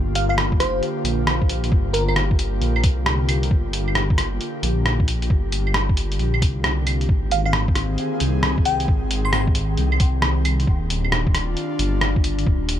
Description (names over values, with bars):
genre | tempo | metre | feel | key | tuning
future garage | 134 BPM | 4/4 | swing 65% on 16ths | G phrygian | A4 = 440 Hz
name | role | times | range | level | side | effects
airy breathy pad | sustained chords | 0.0-12.8 s | D3 to Ab4 | -27 LUFS | equal | chorus, sidechain pumping
dark detuned saw bass | bass | 0.0-12.8 s | Eb1 to C2 | -22 LUFS | equal | sidechain pumping
bell-like FM electric piano | melody | 0.2-2.1, 7.3-9.4 s | Bb4 to C6 | -28 LUFS | equal | chorus, phaser, dub echo
lo-fi sampler-style drum kit | drums | 0.2-12.8 s | claves, hi-hat, rim click | -24 LUFS | equal | none
electronic kick drum | drums | 0.5-12.6 s | none | -19 LUFS | equal | none
room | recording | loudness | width
digital ambience | none | -18 LUFS | side -11 dB against mid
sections
0.0-12.8 A section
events
none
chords
0.0 Gm7; 7.1 Abmaj7; 10.7 Ebmaj9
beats
0.38 0.82 1.27 | 1.72 2.17 2.62 3.06 | 3.51 3.96 4.41 4.86 | 5.30 5.75 6.20 6.65 | 7.09 7.54 7.99 8.44 | 8.88 9.33 9.78 10.23 | 10.68 11.12 11.57 12.02 | 12.47